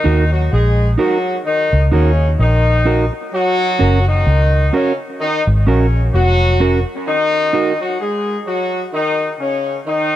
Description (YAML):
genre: reggae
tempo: 64 BPM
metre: 4/4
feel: swing 57% on 16ths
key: Eb minor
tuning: A4 = 437 Hz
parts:
  - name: mellow horn section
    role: second line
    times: 0.0-10.2 s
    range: Db3 to Ab4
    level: -17 LUFS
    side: left 2 dB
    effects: dub echo
  - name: mellow electric guitar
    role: accompaniment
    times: 0.0-7.7 s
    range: Db4 to Bb4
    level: -21 LUFS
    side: right 4 dB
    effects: dub echo
  - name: vintage muted fingered electric bass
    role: bass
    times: 0.1-6.8 s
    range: F1 to Eb2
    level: -13 LUFS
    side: equal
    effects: none
room: light reverb, small room ambience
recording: none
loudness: -13 LUFS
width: side -13 dB against mid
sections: 0.0-10.2 A section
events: break 7.1-10.2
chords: 0.0 Ebm; 3.3 Gb; 7.1 Ebm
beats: 0.51 1.45 2.39 | 3.32 4.26 5.19 6.13 | 7.06 8.00 8.94 9.87